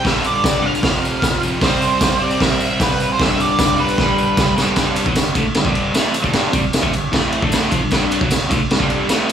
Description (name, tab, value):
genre	garage rock duo or trio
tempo	152 BPM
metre	4/4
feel	straight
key	G major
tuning	A4 = 440 Hz
part	octave-fuzz lead guitar	melody	0.0-4.5 s	B4 to F5	-20 LUFS	right 1 dB	distortion
part	overdriven electric guitar	riff	0.0-9.3 s	F2 to D4	-19 LUFS	equal	none
part	raw garage drum kit	drums	0.0-9.3 s	hi-hat, kick drum, ride cymbal, snare drum	-17 LUFS	equal	none
part	tambourine	percussion	0.2-9.3 s	none	-32 LUFS	right 4 dB	none
room	light reverb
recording	small room ambience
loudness	-14 LUFS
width	side -8 dB against mid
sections	0.0-4.8 A section; 4.8-9.3 B section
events	drum fill 4.0-4.8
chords	0.1 G5; 0.8 F5; 1.6 C; 3.2 G5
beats	| 0.05 0.44 0.84 1.23 | 1.62 2.01 2.41 2.80 | 3.19 3.59 3.98 4.37 | 4.77 5.16 5.55 5.95 | 6.34 6.74 7.13 7.53 | 7.92 8.31 8.71 9.11